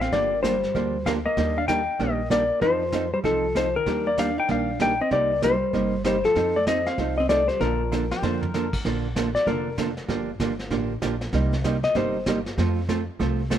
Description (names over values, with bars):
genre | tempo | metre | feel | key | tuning
country, western swing | 192 BPM | 4/4 | swing 62% on 8ths | Bb major | A4 = 440 Hz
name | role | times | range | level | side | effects
clean lap steel guitar | melody | 0.0-9.8, 11.8-12.3 s | A4 to G5 | -23 LUFS | left 3 dB | none
hollow-body jazz guitar | second line | 0.0-8.5 s | Eb3 to Eb4 | -30 LUFS | right 3 dB | none
upright bass | bass | 0.0-13.6 s | F1 to F2 | -30 LUFS | equal | none
vintage brush drum kit | drums | 0.0-13.6 s | brushed snare drum, crash cymbal, hi-hat, kick drum, snare drum, toms | -32 LUFS | equal | none
hollow-body jazz guitar | accompaniment | 0.1-13.6 s | C3 to A4 | -27 LUFS | right 4 dB | none
pedal steel guitar | second line | 8.1-8.8 s | G4 to C5 | -34 LUFS | left 4 dB | none
room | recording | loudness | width
light reverb | none | -21 LUFS | side -10 dB against mid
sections
0.0-8.8 A section; 8.8-13.6 B section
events
drum fill 7.9-8.5; electric slide guitar solo 8.8-13.6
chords
0.1 Gm7; 1.4 Ebmaj7; 2.6 F7; 3.9 Ebmaj7; 5.1 Cm7; 6.4 F7; 7.6 Bbmaj7; 10.1 Gm7; 11.3 Cm7; 12.6 F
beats
| 0.12 0.43 0.74 1.06 | 1.37 1.68 1.99 2.30 | 2.62 2.93 3.24 3.55 | 3.86 4.17 4.49 4.80 | 5.11 5.42 5.73 6.04 | 6.36 6.67 6.98 7.29 | 7.60 7.91 8.22 8.54 | 8.85 9.16 9.47 9.78 | 10.09 10.40 10.71 11.02 | 11.34 11.65 11.96 12.27 | 12.58 12.89 13.20 13.51